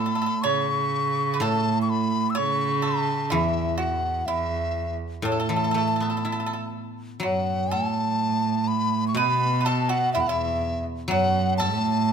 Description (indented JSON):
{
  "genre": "chinese traditional, Chinese chamber ensemble",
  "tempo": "62 BPM",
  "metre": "2/4",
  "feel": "rubato",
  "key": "A gong mode",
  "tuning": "A4 = 444 Hz",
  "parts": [
    { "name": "mellow hollow large dizi", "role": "melody", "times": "0.0-12.1 s", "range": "E5 to E6", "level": "-26 LUFS", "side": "left 4 dB", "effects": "none" },
    { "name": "pipa", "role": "second line", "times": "0.0-12.1 s", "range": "E4 to C#5", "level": "-29 LUFS", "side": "right 5 dB", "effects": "none" },
    { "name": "rich cello", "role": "second line", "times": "0.0-12.1 s", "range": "E2 to C#3", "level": "-26 LUFS", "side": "right 6 dB", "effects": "none" },
    { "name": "guzheng", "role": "accompaniment", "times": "0.0-12.1 s", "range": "A2 to E4", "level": "-30 LUFS", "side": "left 3 dB", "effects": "none" }
  ],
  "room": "moderate scoring stage reverb, RT60 1.9 s",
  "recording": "close, detailed microphones",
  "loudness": "-22 LUFS",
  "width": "side -7 dB against mid",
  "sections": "0.0-7.2 A section; 7.2-12.1 B section",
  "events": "none",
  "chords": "none"
}